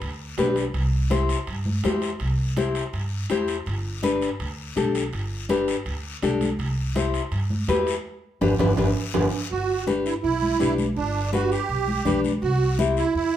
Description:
latin, cumbia; 164 BPM; 4/4; straight; G major; A4 = 440 Hz
upright bass; bass; 0.0-13.4 s; G1 to G2; -26 LUFS; right 1 dB
congas; percussion; 0.0-13.3 s; -30 LUFS; right 1 dB
guiro; percussion; 0.0-13.4 s; -38 LUFS; left 5 dB
timbales; percussion; 0.0-9.2 s; -32 LUFS; right 4 dB
nylon-string guitar; accompaniment; 0.4-13.0 s; C4 to C5; -25 LUFS; left 4 dB
musette accordion; melody; 9.5-13.4 s; D4 to G4; -24 LUFS; right 6 dB
moderate large studio reverb, RT60 0.9 s; band playing live in one room; -22 LUFS; side -11 dB against mid
0.0-9.5 A section; 9.5-13.4 B section
band accent 8.1-9.5; drum fill 8.4-9.5
0.0 G; 0.7 C; 3.7 Gadd9; 6.6 C; 8.1 G; 12.4 C
0.02 0.38 | 0.75 1.11 1.48 1.84 | 2.21 2.57 2.94 3.30 | 3.67 4.03 4.40 4.76 | 5.13 5.50 5.86 6.23 | 6.59 6.96 7.32 7.69 | 8.05 8.41 8.78 9.14 | 9.51 9.87 10.24 10.60 | 10.97 11.33 11.70 12.06 | 12.42 12.79 13.15

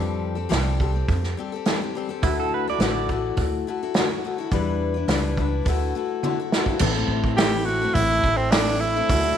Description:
folk rock and heartland rock; 105 BPM; 4/4; straight; A4 = 440 Hz
picked steel-string acoustic guitar; accompaniment; 0.0-9.4 s; A2 to B4; -26 LUFS; left 8 dB
upright bass; bass; 0.0-9.3 s; A1 to F2; -26 LUFS; right 1 dB
unplugged drum kit; drums; 0.5-9.2 s; crash cymbal, hi-hat, kick drum, snare drum, toms; -24 LUFS; right 2 dB
pedal steel guitar; second line; 2.2-3.1 s; E4 to D5; -28 LUFS; right 10 dB
tonewheel organ; sustained chords; 6.5-9.4 s; E3 to D5; -34 LUFS; right 10 dB; slow rotary speaker
clear tenor saxophone; melody; 7.4-9.4 s; C4 to G4; -21 LUFS; right 1 dB
light reverb, small room ambience; 1960s-style stereo with parts hard left and right; -20 LUFS; side -9 dB against mid
0.0-6.8 A section; 6.8-9.4 B section
drum fill 6.2-6.8
0.0 Fadd9; 2.2 Dadd9; 4.5 Em7; 5.7 Dadd9; 6.8 Am
0.51 1.08 1.65 | 2.22 2.80 3.37 3.94 | 4.51 5.09 5.66 6.23 | 6.80 7.38 7.95 8.52 | 9.10

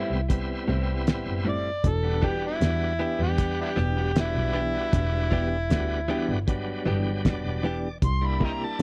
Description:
straight-eighth soul blues; 78 BPM; 4/4; straight; E minor; A4 = 443 Hz
overdriven harmonica; melody; 0.0-8.8 s; D4 to C6; -32 LUFS; equal
bright tonewheel organ; accompaniment; 0.0-8.8 s; F#3 to G5; -35 LUFS; equal; slow rotary speaker, overdrive
direct-recorded clean electric guitar; stabs; 0.0-8.6 s; A2 to G4; -32 LUFS; equal; harmonic tremolo
warm double bass; bass; 0.1-8.8 s; E1 to E2; -30 LUFS; equal
cloth-damped thuddy drum kit; drums; 0.3-8.8 s; hi-hat, kick drum, snare drum; -26 LUFS; equal
studio reverb; dry, close 1970s-style studio recording; -26 LUFS; mono
0.0-8.8 A section
harmonica solo 0.0-8.8; tonewheel organ fill 6.5-8.0
0.0 Am7; 1.8 Em7; 8.0 C7
0.30 1.07 | 1.84 2.62 3.39 4.16 | 4.93 5.71 6.48 7.25 | 8.02 8.79

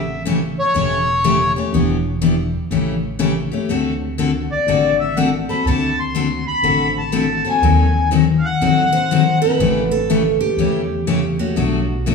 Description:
acoustic string swing (jazz manouche); 122 BPM; 4/4; swing 65% on 8ths; A mixolydian; A4 = 440 Hz
accordion; melody; 0.0-1.5, 4.5-9.4 s; C#5 to C6; -19 LUFS; left 2 dB
upright bass; bass; 0.0-12.1 s; E1 to E2; -23 LUFS; right 1 dB
picked steel-string acoustic guitar; accompaniment; 0.3-12.1 s; B2 to A4; -18 LUFS; left 4 dB
picked steel-string acoustic guitar; second line; 8.9-12.1 s; F#4 to B#4; -20 LUFS; right 6 dB
wet recital hall reverb, RT60 1.5 s; recorded in a church or concert hall, small room ambience; -15 LUFS; side -4 dB against mid
0.0-12.1 A section
0.0 A7; 1.7 Em7; 2.7 A7; 3.7 D7; 7.6 D#dim7; 9.6 A7; 11.6 Bm7
0.26 0.75 1.24 | 1.73 2.22 2.71 3.20 | 3.69 4.18 4.67 5.16 | 5.66 6.15 6.64 7.13 | 7.62 8.12 8.61 9.10 | 9.59 10.09 10.58 11.07 | 11.56 12.05

